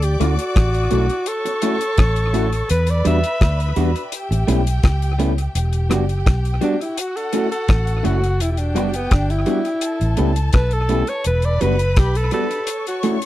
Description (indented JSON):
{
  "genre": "lovers rock reggae",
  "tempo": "84 BPM",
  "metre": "4/4",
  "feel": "straight",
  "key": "E dorian",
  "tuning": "A4 = 440 Hz",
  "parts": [
    { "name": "warm alto saxophone", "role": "melody", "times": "0.0-13.0 s", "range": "B3 to E5", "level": "-23 LUFS", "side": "equal", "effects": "tape echo" },
    { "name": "rich studio string section", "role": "second line", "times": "0.0-13.3 s", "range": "F#4 to D6", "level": "-29 LUFS", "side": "left 1 dB", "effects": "none" },
    { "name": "vintage muted fingered electric bass", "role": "bass", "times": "0.0-12.3 s", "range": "E1 to E2", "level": "-19 LUFS", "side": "equal", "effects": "none" },
    { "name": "damped 70s drum kit", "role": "drums", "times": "0.0-13.3 s", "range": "hi-hat, kick drum, rim click", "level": "-19 LUFS", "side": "equal", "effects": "none" },
    { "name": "tine electric piano", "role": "accompaniment", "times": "0.2-13.2 s", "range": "G3 to F#4", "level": "-23 LUFS", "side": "left 4 dB", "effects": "overdrive, fast stereo tremolo" },
    { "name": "electric guitar through a small old amp", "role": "stabs", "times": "0.2-13.2 s", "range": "G3 to G4", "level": "-23 LUFS", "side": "right 4 dB", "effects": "none" }
  ],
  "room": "little or no reverb",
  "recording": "dry, close 1970s-style studio recording",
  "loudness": "-16 LUFS",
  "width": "side -15 dB against mid",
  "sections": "0.0-5.5 A section; 5.5-13.3 B section",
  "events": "alto saxophone solo 5.5-13.3",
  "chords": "0.0 Dmaj7; 2.7 Em9; 4.1 A7; 5.5 Em9; 7.0 F#m7; 8.4 Em9; 9.8 A7; 11.3 Em9; 12.7 F#m7",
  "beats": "0.56 1.27 1.98 | 2.70 3.41 4.12 4.84 | 5.55 6.26 6.98 7.69 | 8.40 9.12 9.83 10.54 | 11.26 11.97 12.69"
}